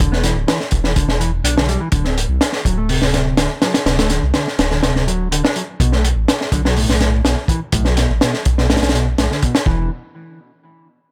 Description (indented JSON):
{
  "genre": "breakbeat, breaks",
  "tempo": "124 BPM",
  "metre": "4/4",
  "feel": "straight",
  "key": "unclear",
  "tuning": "A4 = 436 Hz",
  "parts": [
    { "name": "mellow electric guitar", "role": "riff", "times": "0.0-9.9 s", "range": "A2 to D4", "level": "-25 LUFS", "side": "equal", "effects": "overdrive, low-pass filter, digital delay" },
    { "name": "dark detuned saw bass", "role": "bass", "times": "0.0-9.9 s", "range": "D1 to C2", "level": "-21 LUFS", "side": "equal", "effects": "tube saturation" },
    { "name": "crunchy breakbeat drum kit", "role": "drums", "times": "0.0-9.8 s", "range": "hi-hat, kick drum, snare drum", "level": "-19 LUFS", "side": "equal", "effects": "none" }
  ],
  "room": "little or no reverb",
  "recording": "none",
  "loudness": "-17 LUFS",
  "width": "mono",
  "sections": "0.0-9.7 A section; 9.7-11.1 B section",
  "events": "filter sweep on clean electric guitar 0.0-9.7",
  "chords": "0.0 E7(no3); 1.9 D7; 5.8 N.C."
}